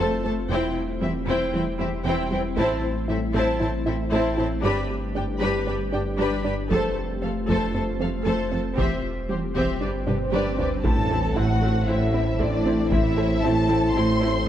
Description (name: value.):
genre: cinematic, hybrid orchestral and electronic film score.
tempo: 116 BPM.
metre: 4/4.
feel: straight.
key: A dorian from 10.8 s.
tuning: A4 = 440 Hz.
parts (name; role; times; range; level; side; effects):
warm symphonic violin section; second line; 0.0-14.5 s; D4 to B5; -30 LUFS; left 3 dB; none.
rich symphonic viola section; accompaniment; 0.0-14.3 s; A3 to A4; -28 LUFS; equal; none.
glassy FM pad; sustained chords; 0.0-14.5 s; E3 to C5; -30 LUFS; left 1 dB; ensemble chorus, built-in reverb.
soft round pluck; arpeggios; 0.0-14.4 s; C3 to A4; -33 LUFS; right 2 dB; none.
saturated sub bass; bass; 0.0-14.5 s; E1 to A1; -30 LUFS; equal; none.
warm studio cello section; bass; 0.0-14.4 s; E2 to A2; -30 LUFS; right 2 dB; none.
taiko ensemble; drums; 2.6-3.6, 6.7-13.4 s; none; -29 LUFS; equal; none.
swell and sub drop; sound effects; 9.4-12.9 s; none; -33 LUFS; right 1 dB; none.
dark symphonic violin section; melody; 10.8-14.5 s; D5 to C6; -28 LUFS; left 4 dB; none.
dark symphonic double bass section; bass; 10.8-14.4 s; A1; -29 LUFS; right 2 dB; none.
dark tuba; bass; 10.8-14.4 s; A1; -29 LUFS; right 2 dB; none.
mellow French horn section; sustained chords; 10.9-14.5 s; C4 to E4; -27 LUFS; left 1 dB; none.
room: moderate scoring stage reverb, RT60 1.6 s.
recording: none.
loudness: -21 LUFS.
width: side -10 dB against mid.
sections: 0.0-10.8 A section; 10.8-14.5 B section.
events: build-up 0.0-10.8; swell 9.4-10.8; drum fill 10.1-10.8; impact 10.8-12.9.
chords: 0.0 F; 0.5 C/E; 2.6 Am; 4.6 G; 6.7 F; 8.8 C/E; 9.8 G; 10.8 Am.